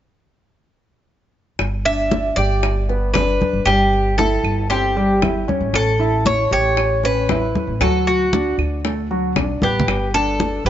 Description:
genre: latin, Cuban son and guajira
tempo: 116 BPM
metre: 4/4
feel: straight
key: G major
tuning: A4 = 440 Hz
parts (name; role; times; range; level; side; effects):
- upright bass; bass; 1.6-10.7 s; G1 to D2; -22 LUFS; equal; none
- bongos; percussion; 1.6-10.7 s; none; -26 LUFS; left 6 dB; none
- claves; percussion; 1.6-10.1 s; none; -28 LUFS; right 5 dB; none
- congas; percussion; 1.6-10.7 s; none; -24 LUFS; left 1 dB; none
- Cuban tres; melody; 1.9-10.7 s; F#4 to E5; -19 LUFS; equal; none
- warm baby grand piano; arpeggios; 1.9-10.7 s; F#3 to G5; -22 LUFS; right 1 dB; none
room: light reverb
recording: nothing above 7.7 kHz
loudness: -16 LUFS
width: side -11 dB against mid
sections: 1.6-10.7 A section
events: drum fill 9.6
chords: 1.6 G; 3.7 C/G; 5.7 A7; 7.8 D; 9.9 Gadd9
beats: | 1.60 2.11 2.63 3.15 | 3.67 4.19 4.71 5.22 | 5.74 6.26 6.78 7.29 | 7.81 8.33 8.85 9.37 | 9.88 10.40

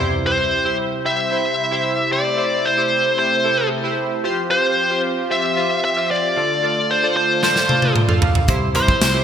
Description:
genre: 1980s-style pop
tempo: 113 BPM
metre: 4/4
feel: straight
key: C major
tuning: A4 = 440 Hz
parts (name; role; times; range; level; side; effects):
- chorused retro synth keys; accompaniment; 0.0-9.2 s; C3 to F5; -22 LUFS; right 1 dB; none
- brassy analog pad; sustained chords; 0.0-9.2 s; C3 to G4; -28 LUFS; left 1 dB; chorus
- bluesy overdriven lead guitar; melody; 0.3-9.2 s; C5 to E5; -18 LUFS; equal; distortion, digital delay
- synth chime; second line; 7.4-9.2 s; C6; -30 LUFS; right 4 dB; ensemble chorus, digital delay
- big rock drum kit; drums; 7.4-9.1 s; hi-hat, kick drum, snare drum, tambourine, toms; -18 LUFS; equal; gated reverb
- vintage slap bass; bass; 8.5-9.2 s; C2; -24 LUFS; equal; none
room: wet plate reverb, RT60 1.9 s, small room ambience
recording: bright 1980s-style digital production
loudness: -16 LUFS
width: side -8 dB against mid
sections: 0.0-9.2 A section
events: drum fill 7.4-8.5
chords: 0.0 C; 4.2 Fsus2; 6.4 Dm; 8.5 C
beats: 0.52 1.05 1.58 | 2.12 2.65 3.18 3.71 | 4.24 4.77 5.30 5.83 | 6.36 6.89 7.42 7.96 | 8.49 9.02

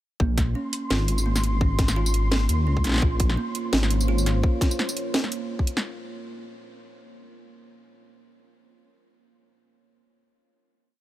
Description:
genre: half-time drum and bass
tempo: 170 BPM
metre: 4/4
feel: swing 55% on 16ths, half-time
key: Bb minor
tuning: A4 = 439 Hz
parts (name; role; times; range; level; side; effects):
- kalimba; arpeggios; 0.2-4.2 s; Bb3 to F4; -32 LUFS; right 4 dB; dub echo
- dark detuned saw bass; bass; 0.2-4.4 s; Ab1 to Eb2; -23 LUFS; equal; none
- electronic kick drum; drums; 0.2-5.7 s; none; -23 LUFS; equal; overdrive
- flickering grainy texture; texture; 0.6-4.4 s; C6; -36 LUFS; right 1 dB; built-in reverb
- drum and bass drum kit; drums; 0.4-5.8 s; hi-hat, snare drum, tambourine; -27 LUFS; equal; overdrive
- deep dark ambient pad; sustained chords; 3.5-5.8 s; Bb3 to Db5; -34 LUFS; right 1 dB; chorus, built-in reverb, sidechain pumping
room: digital ambience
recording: none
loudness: -21 LUFS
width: side -15 dB against mid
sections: 0.2-5.8 drop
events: drop 0.2-5.8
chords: 0.2 Bbmadd9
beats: | 0.20 0.55 0.91 1.26 | 1.61 1.96 2.32 2.67 | 3.02 3.38 3.73 4.08 | 4.43 4.79 5.14 5.49

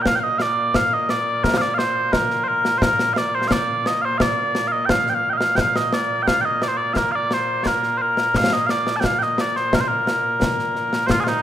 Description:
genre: scottish traditional, Scottish pipe music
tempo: 87 BPM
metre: 2/4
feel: straight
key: Bb major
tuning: A4 = 440 Hz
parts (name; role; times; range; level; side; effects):
- mellow small bagpipes; melody; 0.0-11.4 s; Bb2 to A5; -19 LUFS; equal; none
- concert snare drum and concert bass drum; drums; 0.1-11.4 s; none; -23 LUFS; left 1 dB; none
room: moderate concert hall reverb, RT60 2.5 s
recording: minimal, uncompressed stereo recording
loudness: -18 LUFS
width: side -11 dB against mid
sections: 0.1-11.1 A section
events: none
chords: none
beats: | 0.07 0.76 | 1.45 2.14 | 2.83 3.52 | 4.21 4.90 | 5.58 6.28 | 6.96 7.65 | 8.34 9.03 | 9.72 10.41 | 11.10

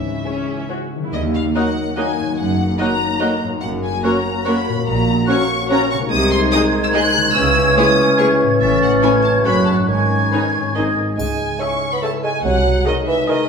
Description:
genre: cinematic, playful, whimsical film cue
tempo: 144 BPM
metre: 3/4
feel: straight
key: Eb minor, C# minor from 6.1 s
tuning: A4 = 440 Hz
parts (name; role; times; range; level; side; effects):
- warm studio violin section; melody; 0.0-13.5 s; Eb5 to F#6; -23 LUFS; left 3 dB; none
- dark French horn section; sustained chords; 0.0-10.9 s; D#3 to Gb4; -24 LUFS; left 4 dB; none
- concert harp; arpeggios; 0.0-13.5 s; Gb2 to D#5; -24 LUFS; left 3 dB; none
- rich studio double bass section; bass; 0.0-12.8 s; Gb1 to Eb2; -25 LUFS; right 3 dB; none
- warm studio cello section; bass; 0.0-12.8 s; C#2 to E3; -24 LUFS; right 3 dB; none
- warm studio violin section; second line; 0.3-13.5 s; Gb4 to C#6; -26 LUFS; left 1 dB; none
- warm studio viola section; accompaniment; 0.3-13.5 s; G#3 to E5; -24 LUFS; equal; none
- bright large flute ensemble; second line; 1.5-11.0 s; Gb6 to A6; -22 LUFS; right 2 dB; none
- dark clarinet; second line; 1.6-10.8 s; Db4 to Eb4; -27 LUFS; left 2 dB; none
- mellow cor anglais; second line; 1.6-11.2 s; Bb4 to D#5; -26 LUFS; left 1 dB; none
- mellow bassoon; accompaniment; 1.6-13.4 s; D#3 to C#4; -21 LUFS; right 1 dB; none
- triangle; percussion; 11.2-12.0 s; none; -38 LUFS; left 1 dB; none
room: wet recital hall reverb, RT60 1.4 s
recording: recorded in a church or concert hall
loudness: -14 LUFS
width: side -6 dB against mid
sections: 0.0-1.1 A section; 1.1-11.2 B section; 11.2-13.5 A section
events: none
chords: 0.0 C#m; 1.1 Ebm; 2.4 Ebm/Gb; 3.6 Gb; 4.9 Gb/Bb; 6.1 G#7/B#; 7.4 C#m; 8.6 A; 9.4 F#m; 9.9 G#sus4; 10.8 G#; 11.2 C#m; 12.4 G#7/B#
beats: 0.27 0.70 | 1.13 1.55 1.97 | 2.38 2.80 3.21 | 3.62 4.04 4.45 | 4.86 5.28 5.70 | 6.11 6.53 6.94 | 7.35 7.77 8.18 | 8.60 9.02 9.45 | 9.88 10.32 10.75 | 11.18 11.61 12.02 | 12.44 12.86 13.28

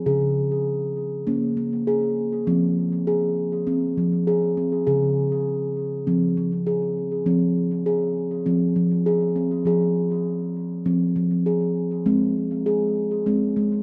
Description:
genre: world meditative, meditative tuned percussion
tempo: 100 BPM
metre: 4/4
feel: swing 54% on 16ths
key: F minor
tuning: A4 = 441 Hz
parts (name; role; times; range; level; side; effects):
- steel tongue drum; solo; 0.0-13.8 s; Db3 to Ab4; -23 LUFS; equal; tape echo
room: moderate scoring stage reverb, RT60 1.7 s, studio ambience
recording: none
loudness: -23 LUFS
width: mono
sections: 0.0-7.3 A section; 7.3-13.8 B section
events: none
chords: 0.1 Db5; 1.3 Bbm; 2.5 Fm; 4.9 Db5; 6.1 Fm; 12.1 Ab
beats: | 0.07 0.67 1.27 1.87 | 2.47 3.07 3.67 4.27 | 4.87 5.47 6.07 6.67 | 7.27 7.87 8.46 9.06 | 9.66 10.26 10.86 11.46 | 12.06 12.66 13.26

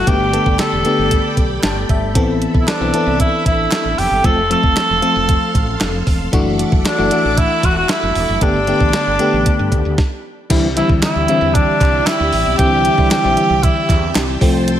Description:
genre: 1980s-style pop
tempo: 115 BPM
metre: 4/4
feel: straight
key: C major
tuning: A4 = 440 Hz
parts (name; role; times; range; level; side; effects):
- mellow cor anglais; melody; 0.0-14.2 s; D4 to A4; -17 LUFS; right 1 dB; none
- FM electric piano; accompaniment; 0.0-14.8 s; D3 to A5; -19 LUFS; left 2 dB; chorus
- string machine, violins; sustained chords; 0.0-14.8 s; G4 to D6; -25 LUFS; right 1 dB; ensemble chorus
- woody fretless electric bass; bass; 0.0-14.8 s; E1 to G2; -21 LUFS; right 1 dB; tube saturation, wide subtle chorus
- clean 12-bit digital drum machine; drums; 0.1-14.8 s; crash cymbal, hi-hat, kick drum, snare drum, tambourine; -17 LUFS; equal; none
- group handclap; percussion; 0.6-14.3 s; none; -32 LUFS; right 4 dB; none
room: light reverb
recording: none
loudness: -13 LUFS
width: side -10 dB against mid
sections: 0.0-10.5 A section; 10.5-14.8 B section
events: FM electric piano fill 1.4-2.2; stop 10.0-10.5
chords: 0.1 Gadd9; 2.2 Amadd9; 4.2 F; 6.3 Dadd9/F#; 8.4 Gadd9; 10.5 Cadd9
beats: | 0.07 0.59 1.11 1.63 | 2.15 2.68 3.20 3.72 | 4.24 4.76 5.29 5.81 | 6.33 6.85 7.37 7.89 | 8.41 8.94 9.46 9.98 | 10.50 11.02 11.54 12.07 | 12.59 13.11 13.63 14.15 | 14.68

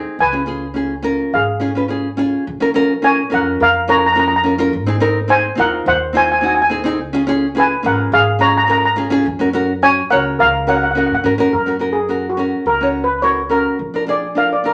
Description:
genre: calypso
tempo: 106 BPM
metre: 4/4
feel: swing 53% on 16ths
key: F# major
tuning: A4 = 441 Hz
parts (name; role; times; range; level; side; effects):
- nylon-string guitar; accompaniment; 0.0-14.7 s; B#3 to C#5; -20 LUFS; equal; none
- upright bass; bass; 0.0-14.7 s; G#1 to A#2; -28 LUFS; equal; none
- steel pan; melody; 0.2-14.7 s; F#4 to A#5; -17 LUFS; equal; none
room: wet studio reverb, RT60 0.6 s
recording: none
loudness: -16 LUFS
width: mono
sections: 0.0-2.5 A section; 2.5-11.5 B section; 11.5-14.7 C section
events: steel pan solo 11.5-14.7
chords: 0.2 C#7; 2.5 A#m; 4.7 G#; 7.0 C#; 9.3 F#; 13.8 A#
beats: | 0.19 0.76 1.33 1.89 | 2.46 3.03 3.59 4.16 | 4.73 5.29 5.86 6.42 | 6.99 7.56 8.12 8.69 | 9.26 9.82 10.39 10.96 | 11.53 12.09 12.66 13.23 | 13.80 14.37

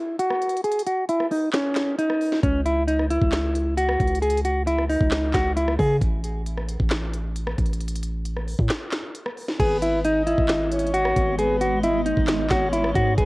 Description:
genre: hip hop, trap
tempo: 134 BPM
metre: 4/4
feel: half-time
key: G# phrygian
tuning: A4 = 445 Hz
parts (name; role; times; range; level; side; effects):
- mellow electric guitar; melody; 0.0-6.0, 9.6-13.3 s; C#4 to G#4; -22 LUFS; equal; low-pass filter, cassette tape
- trap drum kit; drums; 0.2-13.3 s; crash cymbal, handclaps, hi-hat, kick drum, rim click, snare drum; -26 LUFS; equal; cassette tape
- long sustained 808-style bass; bass; 2.4-13.3 s; G#1 to C#3; -26 LUFS; equal; none
- breathy flute-like synth lead; second line; 9.6-13.3 s; B4 to D#5; -28 LUFS; left 1 dB; chorus, cassette tape
- granular cloud pad; sustained chords; 10.4-13.3 s; G#3 to D#5; -31 LUFS; right 1 dB; built-in reverb, cassette tape
room: little or no reverb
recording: home recording on cassette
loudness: -20 LUFS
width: side -22 dB against mid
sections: 0.0-9.6 A section; 9.6-13.3 B section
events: break 0.0-2.4, 6.0-9.6; kick muted 8.7-9.6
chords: 0.0 N.C.; 2.4 C#m; 6.0 N.C.; 9.6 G#m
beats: 0.19 | 0.64 1.09 1.54 1.99 | 2.43 2.88 3.33 3.78 | 4.22 4.67 5.12 5.57 | 6.01 6.46 6.91 7.36 | 7.81 8.25 8.70 9.15 | 9.60 10.04 10.49 10.94 | 11.39 11.84 12.28 12.73 | 13.18

